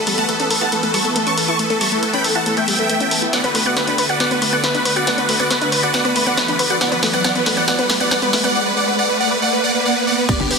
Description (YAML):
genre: uplifting trance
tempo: 138 BPM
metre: 4/4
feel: straight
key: unclear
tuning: A4 = 440 Hz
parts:
  - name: supersaw chords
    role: melody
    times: 0.0-10.6 s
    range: G4 to C#6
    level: -18 LUFS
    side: right 1 dB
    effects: phaser, analog chorus, sidechain pumping, digital delay
  - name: analog pluck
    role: second line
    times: 0.0-10.6 s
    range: G4 to C#6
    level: -27 LUFS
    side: left 1 dB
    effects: chorus, sidechain pumping, ping-pong delay
  - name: filtered supersaw swell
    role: sustained chords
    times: 0.0-10.6 s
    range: D3 to B4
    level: -24 LUFS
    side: right 1 dB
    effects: phaser, sidechain pumping
  - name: analog pluck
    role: arpeggios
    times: 0.0-10.6 s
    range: D3 to B4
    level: -23 LUFS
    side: left 2 dB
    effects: chorus, sidechain pumping, ping-pong delay
  - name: punchy analog drum machine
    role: drums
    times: 0.1-10.6 s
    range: crash cymbal, hi-hat, snare drum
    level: -21 LUFS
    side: equal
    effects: high-pass filter on hats, high-pass filter on snare, high-pass filter on cymbals, high-pass filter on room
  - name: riser and impact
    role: sound effects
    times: 5.4-10.6 s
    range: none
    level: -25 LUFS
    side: right 3 dB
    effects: none
  - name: electronic kick drum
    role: drums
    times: 10.3-10.4 s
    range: none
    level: -21 LUFS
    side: equal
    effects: none
  - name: tight sequencer bass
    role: bass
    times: 10.4-10.5 s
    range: G1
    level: -25 LUFS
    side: equal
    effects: tube saturation, sidechain pumping
room: wet huge ambient reverb, RT60 7.8 s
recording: dense, heavily limited modern master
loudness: -14 LUFS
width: side -4 dB against mid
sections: 0.0-10.3 A section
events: build-up 0.0-10.3; filter sweep on synth pluck 0.0-10.3; drum fill 3.3-8.5; riser 5.4-10.3; impact 10.3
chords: 0.0 Asus2; 3.3 Bm7; 6.8 Esus2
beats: 0.29 0.72 1.16 | 1.59 2.03 2.46 2.90 | 3.33 3.77 4.20 4.64 | 5.07 5.51 5.94 6.38 | 6.81 7.25 7.68 8.12 | 8.55 8.98 9.42 9.85 | 10.29